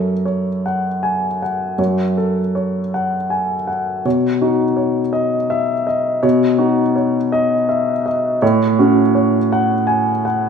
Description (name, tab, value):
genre	neoclassical minimalist piano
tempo	54 BPM (dotted quarters)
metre	6/8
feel	uneven beats, rubato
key	F# dorian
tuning	A4 = 445 Hz
part	warm upright piano	solo	0.0-10.5 s	F#2 to G#5	-15 LUFS	equal	none
room	wet recital hall reverb, RT60 1.7 s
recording	minimal, uncompressed stereo recording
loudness	-15 LUFS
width	side -6 dB against mid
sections	0.0-10.5 A section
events	none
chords	0.0 F#m; 4.1 Badd9; 8.4 F#m/A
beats	0.65 | 1.78 2.93 | 4.05 5.14 | 6.24 7.32 | 8.42 9.52